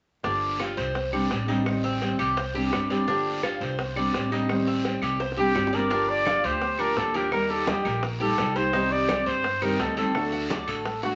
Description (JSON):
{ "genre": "latin, Cuban son and guajira", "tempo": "170 BPM", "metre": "4/4", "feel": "straight", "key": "G minor", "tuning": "A4 = 442 Hz", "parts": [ { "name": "fingerpicked steel-string acoustic guitar", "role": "accompaniment", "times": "0.2-11.2 s", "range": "C3 to G4", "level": "-31 LUFS", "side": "equal", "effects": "none" }, { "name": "Cuban tres", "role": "arpeggios", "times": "0.2-11.2 s", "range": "C4 to Eb5", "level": "-32 LUFS", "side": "equal", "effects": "none" }, { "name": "upright bass", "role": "bass", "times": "0.2-11.2 s", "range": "G1 to G2", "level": "-37 LUFS", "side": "equal", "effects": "none" }, { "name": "bongos", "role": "percussion", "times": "0.2-11.1 s", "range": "none", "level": "-37 LUFS", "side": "equal", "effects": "none" }, { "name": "guiro", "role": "percussion", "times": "0.2-11.2 s", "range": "none", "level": "-39 LUFS", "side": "equal", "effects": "none" }, { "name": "claves", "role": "percussion", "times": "0.6-10.9 s", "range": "none", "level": "-40 LUFS", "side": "equal", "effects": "none" }, { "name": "warm trumpet", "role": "melody", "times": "5.4-11.2 s", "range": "F#4 to D5", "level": "-28 LUFS", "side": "equal", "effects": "none" }, { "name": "congas", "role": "percussion", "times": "5.9-11.2 s", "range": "none", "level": "-37 LUFS", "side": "equal", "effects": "none" } ], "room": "wet studio reverb, RT60 0.7 s", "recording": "vinyl crackle, nothing above 7.8 kHz", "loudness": "-26 LUFS", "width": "mono", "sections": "0.2-5.9 A section; 5.9-11.2 B section", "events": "drum fill 5.2-5.9", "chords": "0.2 Gm7; 1.0 Csus2; 1.7 Am7b5; 2.4 Csus2; 3.1 Gm7; 3.8 Csus2; 4.5 Am7b5; 5.2 Csus2; 5.9 Gm7; 7.3 Eb; 8.7 Cm; 10.1 D" }